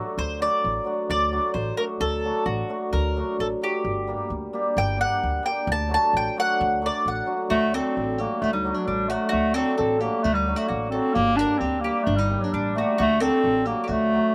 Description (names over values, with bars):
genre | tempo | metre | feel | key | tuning
balkan folk, Balkan wedding band | 131 BPM | 2/4 | straight | unclear | A4 = 440 Hz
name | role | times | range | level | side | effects
cimbalom | accompaniment | 0.0-14.3 s | F#3 to G4 | -31 LUFS | equal | slapback echo
mandolin | second line | 0.2-14.3 s | D4 to A5 | -28 LUFS | equal | none
upright bass | bass | 0.2-14.2 s | G1 to D2 | -32 LUFS | equal | none
warm clarinet | melody | 7.5-14.3 s | F#3 to D4 | -25 LUFS | equal | none
room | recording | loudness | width
little or no reverb | recorded outdoors, with no room sound | -24 LUFS | mono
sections
0.2-7.5 A section; 7.5-14.3 B section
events
mandolin solo 0.2-7.5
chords
0.2 D; 3.9 Gm; 5.7 D; 11.2 Gm; 13.0 D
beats
| 0.19 0.65 | 1.10 1.56 | 2.02 2.48 | 2.94 3.40 | 3.86 4.31 | 4.77 5.23 | 5.69 6.14 | 6.60 7.06 | 7.51 7.97 | 8.43 8.88 | 9.34 9.79 | 10.25 10.71 | 11.16 11.62 | 12.08 12.54 | 12.99 13.45 | 13.91